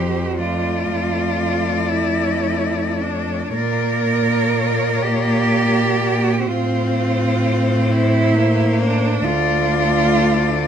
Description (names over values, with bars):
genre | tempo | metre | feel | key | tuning
classical, lyrical piece for cello ensemble | 35-45 BPM (dotted quarters) | 6/8 | rubato | F major | A4 = 440 Hz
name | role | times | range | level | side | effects
warm cello | melody | 0.0-10.7 s | C5 to D5 | -24 LUFS | left 8 dB | none
rich cello | second line | 0.0-10.7 s | D4 to Bb4 | -21 LUFS | right 6 dB | none
rich cello | accompaniment | 0.0-10.6 s | F3 to C4 | -23 LUFS | left 3 dB | none
rich cello | bass | 0.0-10.6 s | D2 to Bb2 | -21 LUFS | right 1 dB | none
room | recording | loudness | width
light reverb | none | -16 LUFS | side -8 dB against mid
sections
0.0-10.7 A section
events
none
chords
0.4 Dm/F; 3.5 Bb; 6.5 F/A; 9.3 Dm